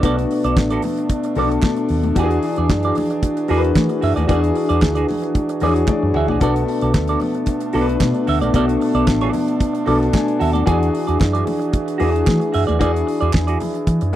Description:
disco; 113 BPM; 4/4; straight; A4 = 443 Hz
semi-hollow electric guitar; accompaniment; 0.0-14.2 s; F#4 to E5; -23 LUFS; right 6 dB; phaser
warm grand piano; accompaniment; 0.0-14.2 s; B2 to G#5; -21 LUFS; left 6 dB
mellow French horn section; sustained chords; 0.0-14.2 s; E3 to G#4; -22 LUFS; right 3 dB
hollow-body short-scale fingered electric bass; bass; 0.0-14.1 s; A1 to E3; -20 LUFS; equal
damped 70s drum kit; drums; 0.0-14.2 s; hi-hat, kick drum, snare drum, toms; -18 LUFS; right 1 dB
congas; percussion; 0.0-14.2 s; -28 LUFS; left 4 dB
group handclap; percussion; 0.6-13.5 s; -32 LUFS; right 8 dB
light reverb; dry, close 1970s-style studio recording; -15 LUFS; side -12 dB against mid
0.0-14.2 A section
grand piano fill 5.4-6.4, 9.9-10.7; drum fill 5.9-6.4
0.0 Bm7; 2.2 E9; 6.4 Bm7; 10.7 E9

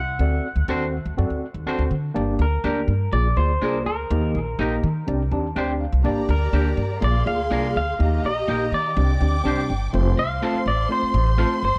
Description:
soul; 123 BPM; 4/4; straight; A4 = 438 Hz
electric guitar through a small old amp; melody; 0.0-11.8 s; Bb4 to Gb5; -29 LUFS; equal; analog delay
upright bass; bass; 0.0-11.8 s; F1 to Eb3; -24 LUFS; equal
mellow tine electric piano; accompaniment; 0.2-11.7 s; A3 to A5; -29 LUFS; equal
electric guitar through a small old amp; stabs; 0.7-11.5 s; D4 to C5; -32 LUFS; equal
warm studio string section; second line; 6.0-11.8 s; G4 to D6; -33 LUFS; equal; analog delay
studio ambience; dark, warm production; -22 LUFS; mono
0.0-2.2 A section; 2.2-9.9 B section; 9.9-11.8 C section
tine electric piano fill 5.1-6.1
0.2 D7; 2.2 Gm; 3.1 Bb7; 4.1 Eb; 5.1 Csus2; 6.1 Gm; 7.0 Bb7; 8.0 Eb; 9.0 Csus2; 9.9 F

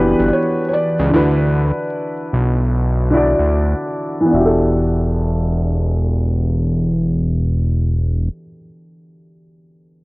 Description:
lo-fi hip hop; 75 BPM; 4/4; swing 65% on 16ths; E minor; A4 = 440 Hz
felt-muted upright piano; melody; 0.0-8.6 s; B4 to E5; -25 LUFS; right 1 dB; low-pass filter
dark upright piano; accompaniment; 0.0-10.0 s; D3 to D5; -18 LUFS; equal; cassette tape, low-pass filter
fat analog bass; bass; 0.0-8.3 s; E1 to D2; -16 LUFS; equal
light reverb; dry, gritty hardware recording, vinyl crackle, low-pass filter, nothing above 7.8 kHz; -15 LUFS; side -24 dB against mid
0.0-4.3 A section; 4.3-7.5 B section
filter sweep 0.0-4.3
0.0 Em11; 1.1 D6; 4.3 Em11

